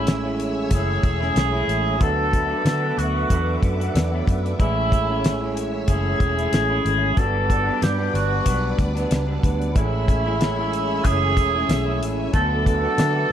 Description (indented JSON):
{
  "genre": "indie pop, bedroom pop",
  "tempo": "93 BPM",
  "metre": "4/4",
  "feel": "swing 55% on 16ths",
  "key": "A major",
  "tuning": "A4 = 440 Hz",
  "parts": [
    { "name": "warm cor anglais", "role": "melody", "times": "0.0-13.3 s", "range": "E4 to A4", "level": "-24 LUFS", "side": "equal", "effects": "wide subtle chorus, slapback echo" },
    { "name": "electric guitar through a small old amp", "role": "accompaniment", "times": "0.0-13.3 s", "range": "G2 to F#4", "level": "-29 LUFS", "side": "left 2 dB", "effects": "wide subtle chorus, warbly pitch drift" },
    { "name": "percussive tonewheel organ", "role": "accompaniment", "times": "0.0-13.3 s", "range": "E3 to F#5", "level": "-28 LUFS", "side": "right 4 dB", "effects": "chorus vibrato, slow rotary speaker, cassette tape" },
    { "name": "string machine, violas", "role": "sustained chords", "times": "0.0-13.3 s", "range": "B4 to E6", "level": "-32 LUFS", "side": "equal", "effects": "ensemble chorus" },
    { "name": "vintage muted fingered electric bass", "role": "bass", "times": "0.0-13.2 s", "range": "E1 to D3", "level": "-25 LUFS", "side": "equal", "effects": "none" },
    { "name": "damped 70s drum kit", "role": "drums", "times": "0.1-13.2 s", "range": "hi-hat, kick drum, snare drum", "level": "-21 LUFS", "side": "equal", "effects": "none" }
  ],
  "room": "small room ambience",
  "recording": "none",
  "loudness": "-19 LUFS",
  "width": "side -10 dB against mid",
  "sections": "0.0-13.3 A section",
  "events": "none",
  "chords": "0.0 Amaj7; 2.0 D6; 4.6 Amaj7; 7.2 Gmaj7; 9.8 Amaj7; 12.3 D6"
}